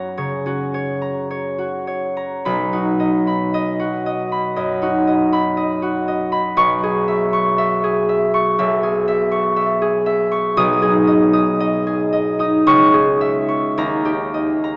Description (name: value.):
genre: classical, solo harp piece.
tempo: 50-62 BPM.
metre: 4/4.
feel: rubato.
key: G# minor from 10.6 s.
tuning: A4 = 441 Hz.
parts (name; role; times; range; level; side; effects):
concert harp; solo; 0.0-14.8 s; B1 to D#6; -18 LUFS; equal; none.
room: wet cathedral reverb, RT60 4.7 s.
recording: small speaker sound.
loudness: -18 LUFS.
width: mono.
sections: 0.0-14.8 A section.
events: none.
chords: 0.0 F#; 2.4 B; 6.6 C#m7/B; 10.6 G#m/B; 12.7 C#m; 13.8 D#.